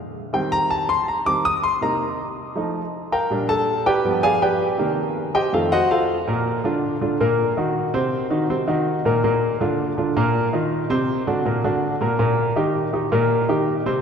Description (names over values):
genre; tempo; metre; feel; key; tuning
jazz; 162 BPM; 4/4; straight; Bb major; A4 = 439 Hz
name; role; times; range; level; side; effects
clear concert grand piano; solo; 0.3-14.0 s; F2 to Eb6; -19 LUFS; equal; none
room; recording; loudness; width
wet church reverb, RT60 3.8 s; recorded in a church or concert hall; -19 LUFS; side -7 dB against mid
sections
0.0-6.3 A section; 6.3-14.0 B section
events
grand piano solo 0.0-6.3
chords
0.3 Eb6; 1.8 Cm7; 2.6 F9; 3.3 Bb6; 4.0 G7b9; 4.8 Cm7; 5.5 F7b9; 6.3 Bb; 7.8 Ebm6; 9.2 Bbadd11; 10.7 F5; 11.5 Bbaug; 12.2 Eb